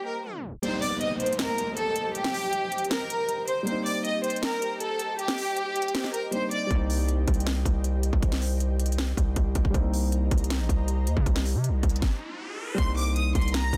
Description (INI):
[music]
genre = hip hop, trap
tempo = 158 BPM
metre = 4/4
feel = half-time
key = C minor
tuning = A4 = 439 Hz
[part]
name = warm studio violin section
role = melody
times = 0.0-6.7, 12.8-13.8 s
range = G4 to Eb6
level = -31 LUFS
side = equal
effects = none
[part]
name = dark baby grand piano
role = accompaniment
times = 0.0-13.8 s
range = G3 to Eb4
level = -38 LUFS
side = equal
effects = none
[part]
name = ethereal airy pad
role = sustained chords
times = 0.0-13.8 s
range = Bb3 to Bb5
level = -42 LUFS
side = equal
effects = ensemble chorus, built-in reverb
[part]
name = trap drum kit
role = drums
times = 0.6-13.8 s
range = hi-hat, kick drum, snare drum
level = -30 LUFS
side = equal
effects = none
[part]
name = downlifter and riser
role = sound effects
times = 0.6-3.7, 11.7-12.8 s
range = none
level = -41 LUFS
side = equal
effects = none
[part]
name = distorted 808-style bass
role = bass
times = 6.7-13.8 s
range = Bb1 to C3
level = -28 LUFS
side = equal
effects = distortion
[sound]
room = little or no reverb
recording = dense, heavily limited modern master, tape stop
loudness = -27 LUFS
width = mono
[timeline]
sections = 0.6-12.8 A section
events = break 0.0-0.6; tape stop 0.2-0.6; kick muted 0.6-6.7; riser 11.7-12.8; stop 12.0-12.8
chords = 0.0 Cm7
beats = 0.25 | 0.63 1.01 1.39 1.77 | 2.15 2.53 2.91 3.29 | 3.67 4.05 4.43 4.81 | 5.19 5.57 5.95 6.33 | 6.71 7.09 7.46 7.84 | 8.22 8.61 8.98 9.36 | 9.74 10.12 10.50 10.88 | 11.26 11.64 12.02 12.40 | 12.78 13.16 13.54